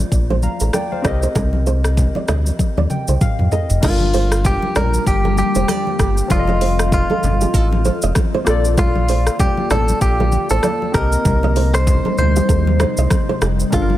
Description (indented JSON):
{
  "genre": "afrobeats",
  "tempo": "97 BPM",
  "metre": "4/4",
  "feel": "swing 58% on 16ths",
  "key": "unclear",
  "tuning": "A4 = 439 Hz",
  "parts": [
    { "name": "warm analog keys", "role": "accompaniment", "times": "0.0-14.0 s", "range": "F3 to Bb5", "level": "-26 LUFS", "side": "left 4 dB", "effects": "chorus" },
    { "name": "round analog bass", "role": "bass", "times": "0.0-14.0 s", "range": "F1 to F2", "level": "-17 LUFS", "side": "equal", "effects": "none" },
    { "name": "congas", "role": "percussion", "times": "0.0-14.0 s", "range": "none", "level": "-25 LUFS", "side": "left 1 dB", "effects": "none" },
    { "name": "afro-pop drum kit", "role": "drums", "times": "0.1-13.9 s", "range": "crash cymbal, hi-hat, kick drum, rim click, shaker, toms", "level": "-20 LUFS", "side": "equal", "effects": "none" },
    { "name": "flamenco guitar", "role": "riff", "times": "0.3-13.9 s", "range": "G4 to Eb5", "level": "-24 LUFS", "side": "right 5 dB", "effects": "digital delay" },
    { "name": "direct-recorded clean electric guitar", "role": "melody", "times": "3.8-14.0 s", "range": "F4 to C5", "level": "-21 LUFS", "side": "equal", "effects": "digital delay" },
    { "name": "glassy FM pad", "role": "sustained chords", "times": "4.3-14.0 s", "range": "C3 to A4", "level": "-25 LUFS", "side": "left 2 dB", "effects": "ensemble chorus, built-in reverb, sidechain pumping" }
  ],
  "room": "digital ambience",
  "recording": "none",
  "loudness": "-14 LUFS",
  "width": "side -14 dB against mid",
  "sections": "0.0-3.8 A section; 3.8-14.0 B section",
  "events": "drum fill 2.6-3.8; synth keys fill 2.6-3.8",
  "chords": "0.0 Bbmaj7; 1.0 Cm7; 3.8 Gm7; 6.3 F7; 8.5 Bbmaj7; 10.9 Cm7"
}